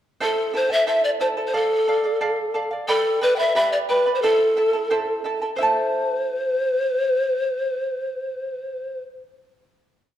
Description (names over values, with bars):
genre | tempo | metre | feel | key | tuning
andean folk, Andean ensemble | 89 BPM | 2/4 | straight | A minor | A4 = 440 Hz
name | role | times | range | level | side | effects
breathy mellow pan flute | melody | 0.2-9.0 s | A4 to G5 | -20 LUFS | equal | none
charango | accompaniment | 0.2-9.8 s | E4 to B5 | -24 LUFS | right 2 dB | none
room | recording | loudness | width
wet recital hall reverb, RT60 1.3 s | dark, warm production | -19 LUFS | side -11 dB against mid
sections
0.2-5.6 A section; 5.6-8.3 final chord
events
none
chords
0.2 Am; 1.5 Dm; 2.9 G; 4.2 Am